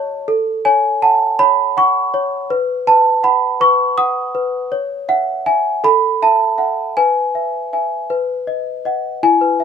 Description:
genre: classical, lullaby for celesta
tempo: 54 BPM (dotted quarters)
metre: 6/8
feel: straight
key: unclear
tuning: A4 = 444 Hz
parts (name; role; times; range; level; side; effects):
- worn celesta; solo; 0.0-9.6 s; E4 to D#6; -14 LUFS; right 1 dB; none
room: light reverb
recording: minimal, uncompressed stereo recording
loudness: -14 LUFS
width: side -7 dB against mid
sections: 0.0-9.2 A section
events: none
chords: 0.3 F#m/A; 2.5 B; 4.7 C#m; 5.8 F#m7/A; 7.0 E/B; 8.1 B

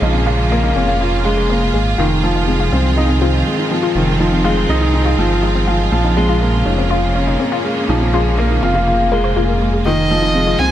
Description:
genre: piano and strings electronica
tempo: 122 BPM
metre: 4/4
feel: straight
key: unclear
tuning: A4 = 440 Hz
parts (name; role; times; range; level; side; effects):
- clear studio string section; sustained chords; 0.0-10.7 s; Db3 to Ab4; -20 LUFS; right 1 dB; none
- warbly dusty pluck; arpeggios; 0.0-10.6 s; C4 to F5; -23 LUFS; left 4 dB; chorus, tape echo
- dark grand piano; riff; 0.0-10.7 s; Eb3 to F4; -17 LUFS; equal; tape echo
- dark detuned saw bass; bass; 0.0-10.7 s; F1 to C2; -17 LUFS; equal; none
- dark violin; melody; 9.9-10.7 s; Eb5 to Ab5; -16 LUFS; right 1 dB; none
room: light reverb, studio reverb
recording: none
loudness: -13 LUFS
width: side -12 dB against mid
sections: 0.0-10.7 A section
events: none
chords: 0.0 Bbm7; 2.0 Fm7; 5.9 Bbm7; 9.9 Fm7

